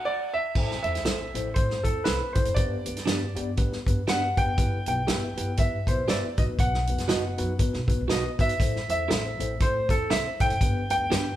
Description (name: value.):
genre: uptempo 1960s-style soul.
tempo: 119 BPM.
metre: 4/4.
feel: swing 58% on 8ths.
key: unclear.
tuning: A4 = 439 Hz.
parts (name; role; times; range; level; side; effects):
warm grand piano; melody; 0.0-11.4 s; A4 to G5; -28 LUFS; equal; none.
mellow tine electric piano; accompaniment; 0.6-11.3 s; B3 to D5; -34 LUFS; left 2 dB; medium stereo tremolo.
upright bass; bass; 0.6-11.4 s; E1 to B2; -31 LUFS; equal; none.
warm soul drum kit; drums; 0.6-11.3 s; crash cymbal, hi-hat, kick drum, snare drum; -26 LUFS; equal; none.
electric guitar through a small old amp; stabs; 1.1-11.3 s; D4 to E5; -32 LUFS; right 5 dB; none.
room: moderate large studio reverb, RT60 1.1 s.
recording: band playing live in one room.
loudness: -23 LUFS.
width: side -13 dB against mid.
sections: 0.6-11.4 A section.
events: band accent 0.0-0.6.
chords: 0.0 D; 0.6 Am; 2.6 G; 4.6 Em/G; 6.3 B; 8.6 Am; 10.6 G.